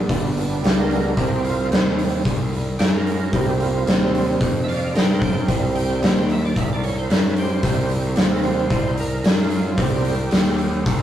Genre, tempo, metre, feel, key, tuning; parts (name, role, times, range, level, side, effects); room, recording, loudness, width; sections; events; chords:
blues rock power trio and southern rock; 111 BPM; 4/4; straight; A4 = 437 Hz
overdriven tonewheel organ; sustained chords; 0.0-10.8 s; C3 to G5; -24 LUFS; right 3 dB; slow rotary speaker, chorus vibrato
fuzz picked electric bass; bass; 0.0-11.0 s; G1 to G2; -24 LUFS; equal; overdrive
oversized low-tuned drum kit; drums; 0.1-11.0 s; hi-hat, kick drum, snare drum; -20 LUFS; equal
light reverb; rough rehearsal-room recording, tube saturation; -17 LUFS; side -11 dB against mid
0.0-11.0 A section
tonewheel organ solo 0.0-11.0
0.0 G; 1.2 C5